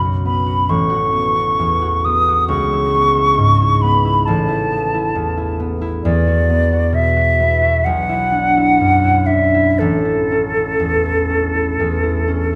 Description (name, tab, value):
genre	classical, impressionist duo for flute and harp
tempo	58-69 BPM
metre	4/4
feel	rubato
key	A major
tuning	A4 = 440 Hz
part	concert harp	accompaniment	0.0-12.6 s	A1 to F#4	-19 LUFS	equal	none
part	hollow concert flute	melody	0.3-12.6 s	A4 to D#6	-18 LUFS	equal	none
room	moderate recital hall reverb, RT60 1.6 s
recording	none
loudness	-16 LUFS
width	mono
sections	0.0-12.6 A section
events	none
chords	0.0 B5; 0.7 A69; 2.5 C#m7; 4.3 Asus2; 6.1 Esus2; 7.9 Bmadd11; 9.8 Aadd9